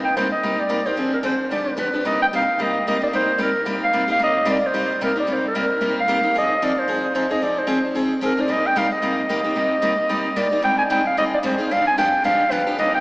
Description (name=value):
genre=jazz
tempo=224 BPM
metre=4/4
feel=swing 57% on 8ths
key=C minor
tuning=A4 = 444 Hz
part: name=growling clarinet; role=melody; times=0.0-13.0 s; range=Bb4 to Ab5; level=-19 LUFS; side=equal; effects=none
part: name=picked steel-string acoustic guitar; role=accompaniment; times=0.0-13.0 s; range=G2 to Ab4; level=-23 LUFS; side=equal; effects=none
room=wet cathedral reverb, RT60 4.5 s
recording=recorded in a church or concert hall, small speaker sound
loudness=-18 LUFS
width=side -24 dB against mid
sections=0.0-2.0 A section; 2.0-13.0 A section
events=none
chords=0.0 Cm9; 1.0 Dm7b5; 1.5 G7; 2.0 Cm7; 6.3 Fm7; 8.5 Cm7; 10.6 Abmaj7; 11.7 G7